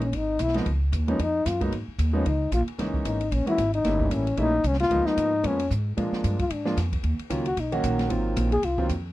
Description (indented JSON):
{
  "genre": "jazz, small-group swing and bop",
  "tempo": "226 BPM",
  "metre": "4/4",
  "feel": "swing 58% on 8ths",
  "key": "Db mixolydian",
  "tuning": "A4 = 440 Hz",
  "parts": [
    { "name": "breathy trombone", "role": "melody", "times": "0.0-8.9 s", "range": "Db4 to Ab4", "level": "-25 LUFS", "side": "left 3 dB", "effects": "none" },
    { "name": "upright bass", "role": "bass", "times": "0.0-9.1 s", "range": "Gb1 to Bb2", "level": "-26 LUFS", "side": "equal", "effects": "none" },
    { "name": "open jazz drum kit", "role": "drums", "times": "0.0-9.0 s", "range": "hi-hat, kick drum, ride cymbal, snare drum", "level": "-35 LUFS", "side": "equal", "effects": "none" },
    { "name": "clear concert grand piano", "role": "accompaniment", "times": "0.5-8.9 s", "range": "Eb3 to Gb4", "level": "-28 LUFS", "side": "right 2 dB", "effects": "none" }
  ],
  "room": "little or no reverb",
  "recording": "dry, close 1970s-style studio recording",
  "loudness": "-22 LUFS",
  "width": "side -16 dB against mid",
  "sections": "0.0-9.1 A section",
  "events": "trombone solo 0.0-9.1",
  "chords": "0.0 Gb13 (rootless); 0.7 Db13; 1.7 Abm; 2.3 Dbsus2; 2.8 Gb13; 3.8 Gdim7; 4.9 Db13; 6.0 Bb7; 7.0 Ebm7; 8.1 Ab13",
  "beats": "0.13 0.39 | 0.66 0.92 1.19 1.46 | 1.72 1.99 2.25 2.52 | 2.78 3.05 3.31 3.58 | 3.85 4.11 4.38 4.64 | 4.91 5.17 5.44 5.71 | 5.97 6.24 6.50 6.77 | 7.04 7.30 7.57 7.83 | 8.10 8.37 8.63 8.90"
}